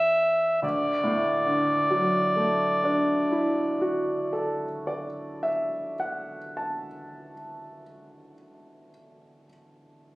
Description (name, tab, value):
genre	classical, impressionist duo for clarinet and grand piano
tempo	32 BPM (dotted quarters)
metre	12/8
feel	rubato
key	D major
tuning	A4 = 440 Hz
part	clear clarinet	melody	0.0-4.6 s	D5 to E5	-24 LUFS	equal	none
part	clear concert grand piano	accompaniment	0.0-10.2 s	A1 to A5	-28 LUFS	equal	none
room	little or no reverb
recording	recorded on a phone in the room, club reverb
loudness	-23 LUFS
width	side -21 dB against mid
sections	0.6-8.0 A section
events	none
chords	0.0 A7sus2; 0.6 Dadd9